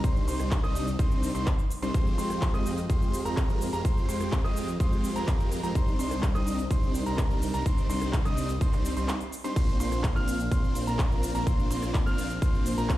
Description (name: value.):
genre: EDM, festival progressive house.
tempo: 126 BPM.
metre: 4/4.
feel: straight.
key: C minor.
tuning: A4 = 440 Hz.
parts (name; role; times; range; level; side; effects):
bright concert grand piano; arpeggios; 0.0-13.0 s; Bb5 to F6; -36 LUFS; right 1 dB; sidechain pumping, tape echo.
big supersaw lead; riff; 0.0-13.0 s; G3 to F5; -32 LUFS; equal; sidechain pumping, tape echo.
wide detuned saw bass; bass; 0.0-13.0 s; Bb1 to F2; -33 LUFS; equal; chorus, sidechain pumping.
big-room dance drum kit; drums; 0.0-13.0 s; cabasa, crash cymbal, handclaps, hi-hat, ride cymbal, rim click; -38 LUFS; equal; overdrive.
electronic kick drum; drums; 0.0-13.0 s; none; -26 LUFS; equal; none.
room: little or no reverb.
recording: played on a big sound system in a bare room, large studio reverb.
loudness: -25 LUFS.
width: side -15 dB against mid.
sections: 0.0-13.0 A section.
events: break 9.1-9.6.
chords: 0.0 Cmadd9; 1.9 Fmadd9; 5.8 Cmadd9; 9.6 Bbadd9.